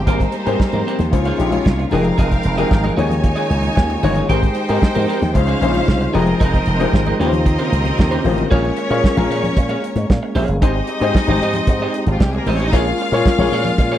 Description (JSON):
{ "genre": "disco", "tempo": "114 BPM", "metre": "4/4", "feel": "straight", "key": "Bb dorian", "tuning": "A4 = 440 Hz", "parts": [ { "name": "clear studio string section", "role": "second line", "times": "0.0-14.0 s", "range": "F3 to Ab5", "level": "-23 LUFS", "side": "equal", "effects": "none" }, { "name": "dark baby grand piano", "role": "accompaniment", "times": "0.0-14.0 s", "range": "Db3 to Eb5", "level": "-22 LUFS", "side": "left 7 dB", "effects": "none" }, { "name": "percussive tonewheel organ", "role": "sustained chords", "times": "0.0-14.0 s", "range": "Db3 to G5", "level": "-24 LUFS", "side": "right 2 dB", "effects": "chorus vibrato, slow rotary speaker" }, { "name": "slap bass with an envelope filter", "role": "bass", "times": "0.0-14.0 s", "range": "F1 to Bb2", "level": "-20 LUFS", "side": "right 1 dB", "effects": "none" }, { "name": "electric guitar at the edge of break-up", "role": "accompaniment", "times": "0.1-14.0 s", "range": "C4 to F5", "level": "-25 LUFS", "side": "right 2 dB", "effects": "tube saturation" }, { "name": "warm soul drum kit", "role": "drums", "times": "0.1-14.0 s", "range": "crash cymbal, hi-hat, kick drum, snare drum", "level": "-16 LUFS", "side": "right 1 dB", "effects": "none" }, { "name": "congas", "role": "percussion", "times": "0.7-14.0 s", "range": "none", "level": "-27 LUFS", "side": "left 4 dB", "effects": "none" } ], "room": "small room ambience", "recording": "dry, close 1970s-style studio recording", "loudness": "-14 LUFS", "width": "side -12 dB against mid", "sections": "0.1-8.5 A section; 8.5-14.0 B section", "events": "none", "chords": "0.1 Abmaj9; 1.1 Dbmaj7; 1.9 Fm11; 3.0 Eb7sus4; 4.3 Abmaj9; 5.4 Dbmaj7; 6.1 Fm11; 7.2 Eb13; 8.5 Bbm7; 10.6 Abmaj7; 12.7 Bbm7" }